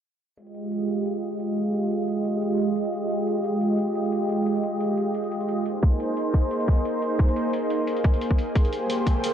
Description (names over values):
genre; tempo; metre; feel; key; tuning
liquid drum and bass; 176 BPM; 4/4; swing 54% on 16ths; F minor; A4 = 440 Hz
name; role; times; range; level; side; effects
lush unison pad; sustained chords; 0.4-9.3 s; Ab3 to Eb5; -24 LUFS; right 1 dB; chorus
electronic hi-hat; drums; 0.4-9.3 s; none; -40 LUFS; equal; none
electronic kick drum; drums; 5.8-9.1 s; none; -20 LUFS; equal; overdrive
riser; sound effects; 8.7-9.3 s; none; -36 LUFS; right 1 dB; none
room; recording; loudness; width
moderate plate reverb, RT60 2.0 s, digital ambience; low-pass filter, lossy compression artefacts; -22 LUFS; side -9 dB against mid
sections
0.4-9.3 A section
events
filter sweep 0.4-9.3; riser 8.7-9.3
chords
0.4 Fm9; 5.7 Bb9sus4; 8.6 Abmaj9